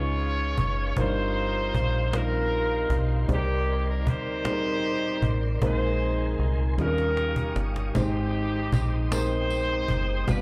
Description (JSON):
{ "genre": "slow gospel", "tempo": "52 BPM (dotted quarters)", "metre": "6/8", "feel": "straight", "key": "Eb major", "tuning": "A4 = 440 Hz", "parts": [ { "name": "warm horn section", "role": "melody", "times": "0.0-10.4 s", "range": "Bb3 to Db5", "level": "-32 LUFS", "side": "equal", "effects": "slapback echo, tape echo" }, { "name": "dark upright piano", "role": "accompaniment", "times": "0.0-10.4 s", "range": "G2 to D5", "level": "-33 LUFS", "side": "equal", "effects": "slapback echo" }, { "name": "tonewheel organ", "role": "sustained chords", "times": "0.0-10.4 s", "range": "Ab3 to Eb6", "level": "-42 LUFS", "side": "equal", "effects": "slow rotary speaker, chorus vibrato" }, { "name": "deep dub fingered electric bass", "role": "bass", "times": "0.0-10.4 s", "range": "Gb1 to Eb2", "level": "-30 LUFS", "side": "equal", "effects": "none" }, { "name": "cajon", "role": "drums", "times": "0.2-10.4 s", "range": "none", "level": "-31 LUFS", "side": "equal", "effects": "none" }, { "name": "tambourine", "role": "percussion", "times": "8.0-10.4 s", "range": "none", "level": "-46 LUFS", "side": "equal", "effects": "none" } ], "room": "studio ambience", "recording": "live gig heard through the venue's PA, club ambience", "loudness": "-26 LUFS", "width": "mono", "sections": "0.0-10.4 A section", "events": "drum fill 6.8-7.9", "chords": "0.0 Db9; 1.0 Eb69/G; 3.3 Cm9; 5.6 Bb9sus4; 6.8 Eb9; 7.9 Abmaj7" }